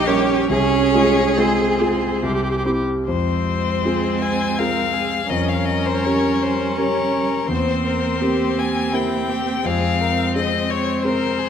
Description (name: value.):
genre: classical, slow romantic movement for piano quintet.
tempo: 66-88 BPM.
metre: 3/4.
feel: rubato.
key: F minor.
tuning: A4 = 440 Hz.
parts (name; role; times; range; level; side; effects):
rich violin; melody; 0.0-11.5 s; Bb4 to Ab5; -24 LUFS; left 9 dB; none.
clear cello; second line; 0.0-11.5 s; G3 to Db4; -24 LUFS; right 7 dB; none.
rich violin; second line; 0.0-11.5 s; E4 to Db5; -27 LUFS; left 4 dB; none.
clear viola; accompaniment; 0.0-11.5 s; C4 to Ab4; -25 LUFS; right 3 dB; none.
warm concert grand piano; accompaniment; 0.0-11.5 s; Bb1 to C5; -22 LUFS; left 1 dB; none.
room: moderate scoring stage reverb, RT60 1.8 s.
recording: close, detailed microphones.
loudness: -17 LUFS.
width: side -8 dB against mid.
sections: 0.0-3.1 A section; 3.1-11.5 B section.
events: none.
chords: 0.0 Gdim/Bb; 0.5 Fm/C; 2.2 C; 3.1 Fm; 5.3 Gm7b5/F; 7.5 C7/E; 9.7 Fm.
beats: | 0.52 1.39 2.24 | 3.07 3.84 4.58 | 5.30 6.05 6.77 | 7.48 8.22 8.93 | 9.65 10.35 11.04.